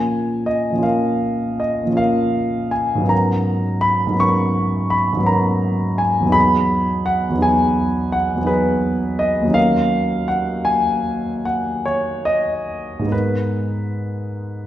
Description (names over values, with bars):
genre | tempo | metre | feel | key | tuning
classical, impressionist solo piano | 44-58 BPM (dotted quarters) | 9/8 | rubato | G# dorian | A4 = 440 Hz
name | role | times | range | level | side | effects
warm concert grand piano | solo | 0.0-14.7 s | D#2 to C#6 | -16 LUFS | equal | none
room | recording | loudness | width
wet recital hall reverb, RT60 1.6 s | recorded in a church or concert hall | -16 LUFS | side -12 dB against mid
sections
0.0-14.7 A section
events
none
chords
0.0 A#m7; 3.1 G#m11; 6.4 Emaj9; 9.6 D#m7; 13.1 G#madd9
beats
0.85 1.99 | 3.12 4.21 5.30 | 6.35 7.43 8.50 | 9.57 10.68 11.85 | 13.12 14.41